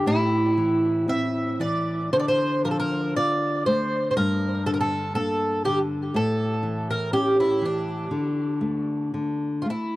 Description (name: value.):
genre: fado.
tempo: 59 BPM.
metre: 2/4.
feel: rubato.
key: D minor.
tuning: A4 = 440 Hz.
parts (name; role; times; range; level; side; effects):
fingerpicked twelve-string acoustic guitar; melody; 0.0-10.0 s; D4 to E5; -24 LUFS; right 1 dB; tape echo.
nylon-string guitar; accompaniment; 0.0-10.0 s; G2 to F4; -26 LUFS; left 1 dB; none.
room: small room reverb.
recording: dry, close 1970s-style studio recording.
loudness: -22 LUFS.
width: side -17 dB against mid.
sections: 0.0-10.0 A section.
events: none.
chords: 0.1 Am; 2.1 Dm; 4.2 Gm; 6.1 A; 8.1 D5.